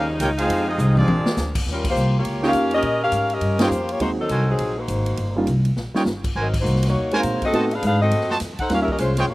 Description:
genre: jazz, big band swing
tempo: 205 BPM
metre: 4/4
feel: swing 61% on 8ths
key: Eb mixolydian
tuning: A4 = 440 Hz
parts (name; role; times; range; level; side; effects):
- clear trumpet section; melody; 0.0-1.5 s; C4 to G5; -24 LUFS; equal; slapback echo
- warm trombone section; second line; 0.0-1.5 s; F3 to G4; -28 LUFS; right 2 dB; slapback echo
- edgy saxophone section; sustained chords; 0.0-1.7 s; C3 to Eb4; -27 LUFS; left 1 dB; none
- upright bass; bass; 0.0-9.3 s; G1 to Bb2; -23 LUFS; equal; none
- swinging big-band drum kit; drums; 0.2-9.3 s; crash cymbal, hi-hat, kick drum, ride cymbal, snare drum, toms; -28 LUFS; equal; none
- mellow saxophone section; melody; 1.7-9.3 s; Gb3 to F#5; -22 LUFS; left 1 dB; slapback echo
- warm upright piano; accompaniment; 2.4-8.9 s; G3 to G4; -23 LUFS; right 1 dB; slapback echo
- clear trumpet section; stabs; 2.4-9.3 s; F4 to A5; -25 LUFS; right 1 dB; none
room: little or no reverb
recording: recorded outdoors, with no room sound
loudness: -18 LUFS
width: side -19 dB against mid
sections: 0.0-1.7 A section; 1.7-9.3 B section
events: drum fill 0.8-1.4, 5.8; band accent 1.8, 3.6, 6.5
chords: 0.5 Fm7; 1.1 Bb9; 1.7 Eb9; 4.0 Ab9; 5.2 Eb9; 6.4 Ab9; 7.5 Adim7; 8.7 Eb9

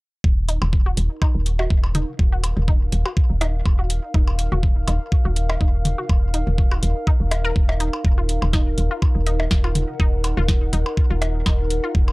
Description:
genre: minimal techno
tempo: 123 BPM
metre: 4/4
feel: swing 54% on 16ths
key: Eb minor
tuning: A4 = 441 Hz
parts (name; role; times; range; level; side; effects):
- woody FM bass; bass; 0.2-12.1 s; Eb1; -21 LUFS; equal; sidechain pumping
- electronic kick drum; drums; 0.2-12.1 s; none; -18 LUFS; equal; none
- warbly tape-like pad; texture; 1.0-12.1 s; Eb4 to Gb5; -31 LUFS; equal; chorus, built-in reverb, sidechain pumping
- resonant blip pluck; riff; 0.5-11.9 s; Eb4 to Bb4; -31 LUFS; equal; chorus, phaser, sidechain pumping, analog delay
- booming analog drum machine; drums; 0.5-11.8 s; hi-hat, snare drum; -26 LUFS; equal; none
- electronic toms and percussion blips; percussion; 0.6-12.1 s; none; -28 LUFS; left 1 dB; overdrive
room: little or no reverb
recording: dry, gritty hardware recording, cassette tape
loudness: -18 LUFS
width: side -24 dB against mid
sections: 0.2-12.1 A section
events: none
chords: 0.2 Eb5

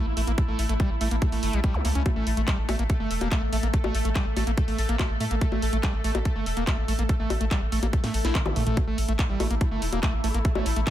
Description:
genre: psychedelic trance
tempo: 143 BPM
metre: 4/4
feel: straight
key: unclear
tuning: A4 = 442 Hz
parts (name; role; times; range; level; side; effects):
- pulsing gated texture; sustained chords; 0.0-10.9 s; A3 to A4; -32 LUFS; equal; chorus, built-in reverb, sidechain pumping
- screaming distorted acid line; riff; 0.0-10.8 s; G3 to E4; -32 LUFS; equal; distortion, chorus, auto-pan, sidechain pumping, ping-pong delay
- round analog bass; bass; 0.1-10.8 s; E1 to A2; -26 LUFS; equal; none
- garage drum kit; drums; 0.2-10.9 s; bongos, handclaps, hi-hat, snare drum, toms; -32 LUFS; left 2 dB; none
- electronic kick drum; drums; 0.4-10.9 s; none; -24 LUFS; equal; none
- zap; sound effects; 1.7-1.8, 8.5-8.6 s; none; -37 LUFS; right 1 dB; none
- formant-sweep wobble bass; second line; 9.4-10.7 s; A3 to C#4; -41 LUFS; right 2 dB; chorus, vintage 12-bit sampler grit, sidechain pumping, high-pass filter, tape echo
room: digital ambience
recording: none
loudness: -23 LUFS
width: side -12 dB against mid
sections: 0.0-10.9 A section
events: drum fill 7.9-8.8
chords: 0.0 A5

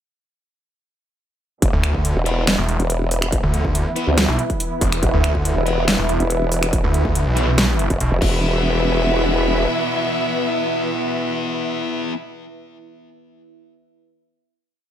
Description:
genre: heavy wobble dubstep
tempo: 141 BPM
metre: 4/4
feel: half-time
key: unclear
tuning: A4 = 440 Hz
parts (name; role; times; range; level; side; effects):
- bright studio string section; sustained chords; 1.6-12.1 s; B2 to E5; -25 LUFS; right 1 dB; sidechain pumping, low-pass filter
- formant-sweep wobble bass; bass; 1.6-9.7 s; E1 to D2; -19 LUFS; equal; chorus, overdrive
- dubstep drum kit; drums; 1.6-8.3 s; crash cymbal, finger snaps, hi-hat, snare drum; -22 LUFS; equal; studio ambience
- electronic kick drum; drums; 1.6-8.3 s; none; -22 LUFS; equal; distortion, studio ambience
- deep dark ambient pad; texture; 3.6-12.5 s; E4 to E5; -28 LUFS; equal; chorus, built-in reverb, sidechain pumping
- snarling distorted saw bass; bass; 1.7-8.1 s; E1 to D2; -19 LUFS; equal; distortion, overdrive
- thick fuzz guitar; stabs; 2.3-12.1 s; B3 to B4; -25 LUFS; left 2 dB; distortion, digital delay
room: digital ambience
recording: none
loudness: -17 LUFS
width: side -10 dB against mid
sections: 1.6-8.4 drop; 8.4-11.8 final note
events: drop 1.6-8.4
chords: 1.6 E5

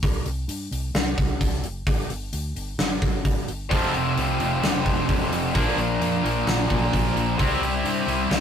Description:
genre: hard rock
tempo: 130 BPM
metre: 4/4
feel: straight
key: unclear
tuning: A4 = 440 Hz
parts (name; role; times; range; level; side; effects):
- fingered electric bass; bass; 0.0-8.4 s; F1 to G2; -30 LUFS; equal; none
- gated 80s drum kit; drums; 0.0-8.4 s; hi-hat, kick drum, snare drum; -25 LUFS; equal; none
- high-gain distorted guitar; riff; 3.7-8.4 s; F2 to C4; -27 LUFS; right 1 dB; distortion
- tight distorted guitar; riff; 3.7-8.4 s; F2 to E4; -24 LUFS; left 1 dB; distortion
room: moderate booth ambience, RT60 0.2 s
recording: rough rehearsal-room recording, warm saturation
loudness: -21 LUFS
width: side -8 dB against mid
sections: 0.0-8.4 A section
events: none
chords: 0.0 C5; 1.9 G5; 3.7 F; 5.6 Bb; 7.4 C

